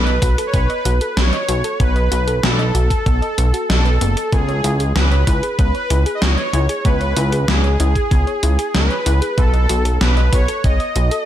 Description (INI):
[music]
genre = synthwave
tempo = 95 BPM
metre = 4/4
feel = straight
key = unclear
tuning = A4 = 439 Hz
[part]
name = soft supersaw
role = melody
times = 0.0-11.3 s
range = G#4 to D#5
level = -21 LUFS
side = equal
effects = digital delay
[part]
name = thumb-piano-like synth pluck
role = arpeggios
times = 0.0-11.3 s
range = B3 to D#5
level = -26 LUFS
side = left 3 dB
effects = chorus, digital delay
[part]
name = chorused synth bass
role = bass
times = 0.0-11.1 s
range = F#1 to C#2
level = -16 LUFS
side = equal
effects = none
[part]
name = gated 80s digital drum machine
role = drums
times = 0.1-11.2 s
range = hi-hat, snare drum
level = -22 LUFS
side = equal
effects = gated reverb, gated reverb snare, overdrive, studio ambience
[part]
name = electronic kick drum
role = drums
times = 0.2-10.8 s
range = none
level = -17 LUFS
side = equal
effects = overdrive, studio ambience
[sound]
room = little or no reverb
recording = none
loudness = -14 LUFS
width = side -11 dB against mid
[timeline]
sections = 0.0-11.3 A section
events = none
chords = 0.0 B7; 4.3 C#m7; 9.4 B7